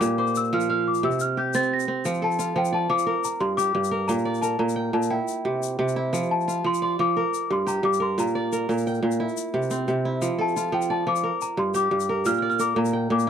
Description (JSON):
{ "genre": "west african traditional, West African string and xylophone music", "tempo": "118 BPM (dotted quarters)", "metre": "12/8", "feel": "straight", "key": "F major", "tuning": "A4 = 436 Hz", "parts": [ { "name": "celesta", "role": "melody", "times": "0.0-13.3 s", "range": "G5 to Bb6", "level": "-25 LUFS", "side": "left 3 dB", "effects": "none" }, { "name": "kora", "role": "arpeggios", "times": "0.0-13.3 s", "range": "G2 to G5", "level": "-24 LUFS", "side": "right 2 dB", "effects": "none" }, { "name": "tube shaker", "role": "percussion", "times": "0.0-13.3 s", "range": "none", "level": "-37 LUFS", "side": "left 21 dB", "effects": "none" } ], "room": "small room ambience", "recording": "dry, close 1970s-style studio recording", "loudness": "-22 LUFS", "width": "side -8 dB against mid", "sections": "0.0-2.1 A section; 2.1-13.3 B section", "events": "celesta solo 0.0-2.1", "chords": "0.0 Bb5; 1.0 C5; 2.1 F; 3.1 Gm; 4.1 Bb; 5.1 C; 6.1 F; 7.2 Gm; 8.2 Bb; 9.2 C; 10.2 F; 11.2 Gm; 12.3 Bb", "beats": "| 0.01 0.52 1.03 1.54 | 2.05 2.56 3.07 3.58 | 4.09 4.61 5.12 5.63 | 6.14 6.65 7.16 7.67 | 8.18 8.69 9.20 9.71 | 10.22 10.73 11.24 11.75 | 12.26 12.77 13.28" }